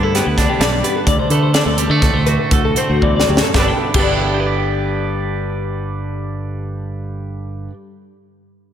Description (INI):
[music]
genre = math rock and midwest emo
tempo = 113-132 BPM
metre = 5/4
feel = straight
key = G major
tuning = A4 = 440 Hz
[part]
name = twelve-string electric guitar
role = accompaniment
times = 0.0-7.8 s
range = D2 to D5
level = -21 LUFS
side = right 4 dB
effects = slapback echo
[part]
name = twelve-string electric guitar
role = arpeggios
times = 0.0-7.7 s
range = F#4 to G5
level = -20 LUFS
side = left 5 dB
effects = spring reverb
[part]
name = fingered electric bass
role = bass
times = 0.0-7.7 s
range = G1 to D3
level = -20 LUFS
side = equal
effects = none
[part]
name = crisp fusion drum kit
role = drums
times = 0.1-4.1 s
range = crash cymbal, hi-hat, kick drum, snare drum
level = -18 LUFS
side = right 1 dB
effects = none
[sound]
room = moderate lush hall reverb, RT60 2.5 s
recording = big arena sound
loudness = -14 LUFS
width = side -9 dB against mid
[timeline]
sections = 0.0-3.5 A section; 3.5-6.2 B section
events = slowing down 0.0-3.5; drum fill 3.0-3.5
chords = 0.0 G6; 1.1 D9; 3.5 G6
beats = 0.15 0.61 | 1.07 1.54 2.02 2.52 3.02 | 3.55 4.08 4.61 5.14 5.68